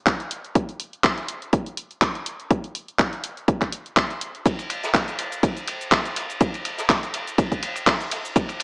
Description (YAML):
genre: house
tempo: 123 BPM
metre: 4/4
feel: swing 55% on 16ths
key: none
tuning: none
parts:
  - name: electronic kick drum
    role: drums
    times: 0.1-8.5 s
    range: none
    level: -22 LUFS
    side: equal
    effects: none
  - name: house drum kit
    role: drums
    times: 0.1-8.6 s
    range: handclaps, hi-hat, shaker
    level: -23 LUFS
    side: equal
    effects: none
  - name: crunchy breakbeat drum kit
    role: drums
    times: 4.5-8.6 s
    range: hi-hat, ride cymbal, snare drum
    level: -28 LUFS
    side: equal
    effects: high-pass filter on cymbals, high-pass filter on hats, high-pass filter on snare, high-pass filter on room, dub echo
room: light reverb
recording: echo-heavy mix, small speaker sound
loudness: -21 LUFS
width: side -27 dB against mid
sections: 0.0-8.6 A section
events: none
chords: none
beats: 0.07 | 0.55 1.04 1.53 2.02 | 2.50 2.99 3.48 3.97 | 4.46 4.94 5.43 5.92 | 6.41 6.89 7.38 7.87 | 8.36